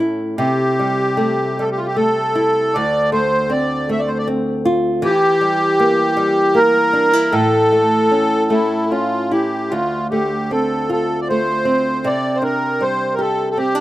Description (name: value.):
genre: celtic folk, Celtic slow air.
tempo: 78 BPM.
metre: 3/4.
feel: rubato.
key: D minor.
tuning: A4 = 441 Hz.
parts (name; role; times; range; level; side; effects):
nylon-string guitar; accompaniment; 0.0-13.8 s; D2 to G4; -19 LUFS; equal; none.
accordion; melody; 0.4-13.8 s; E4 to E5; -16 LUFS; equal; light tremolo tuning.
room: little or no reverb.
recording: recorded outdoors, with no room sound.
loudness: -15 LUFS.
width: side -15 dB against mid.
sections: 0.0-9.7 A section; 9.7-13.8 B section.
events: none.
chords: 0.4 C6; 2.7 Dm7; 5.0 Edim; 7.3 A; 9.7 Dm7; 12.1 Csus2.